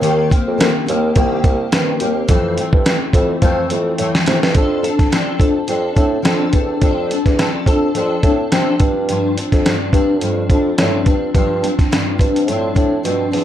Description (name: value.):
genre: indie pop, bedroom pop.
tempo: 106 BPM.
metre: 4/4.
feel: swing 55% on 16ths.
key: F major from 4.6 s.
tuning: A4 = 440 Hz.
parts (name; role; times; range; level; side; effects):
picked steel-string acoustic guitar; accompaniment; 0.0-13.4 s; F2 to A4; -18 LUFS; left 3 dB; ensemble chorus, warbly pitch drift.
mellow bassoon; bass; 0.0-13.4 s; C2 to F3; -19 LUFS; right 2 dB; none.
dusty soul sampler-style drum kit; drums; 0.0-13.4 s; hi-hat, kick drum, snare drum; -16 LUFS; equal; none.
room: light reverb, studio reverb.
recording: dark, warm production.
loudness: -13 LUFS.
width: side -11 dB against mid.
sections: 0.0-4.6 A section; 4.6-13.4 B section.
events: drum fill 3.4-4.6, 13.0-13.4.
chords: 0.0 Eb6; 2.3 Fmaj7; 4.6 F6; 8.8 G7sus4.